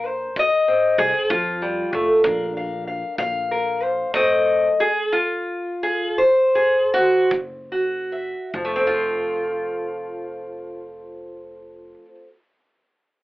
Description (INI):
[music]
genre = acoustic country blues, solo or duo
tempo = 46-64 BPM (dotted quarters)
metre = 12/8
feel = straight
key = F major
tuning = A4 = 440 Hz
[part]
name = fingerpicked steel-string acoustic guitar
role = melody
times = 0.0-12.3 s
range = F3 to F5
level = -19 LUFS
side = equal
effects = none
[part]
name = upright bass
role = bass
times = 0.0-11.9 s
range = F1 to F2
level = -33 LUFS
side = equal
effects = none
[part]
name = kick drum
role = drums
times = 0.4-7.5 s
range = none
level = -32 LUFS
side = equal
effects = none
[sound]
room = moderate booth ambience, RT60 0.3 s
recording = telephone sound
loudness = -18 LUFS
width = side -17 dB against mid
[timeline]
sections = 0.0-8.5 A section; 8.5-13.2 B section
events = slowing down 2.9-8.5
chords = 0.4 F5; 2.2 Bb; 4.1 F5; 7.3 Esus2/F#; 8.5 F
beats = | 0.36 1.30 2.24 3.18 | 4.14 5.13 6.18 7.30 | 8.54 9.84 11.14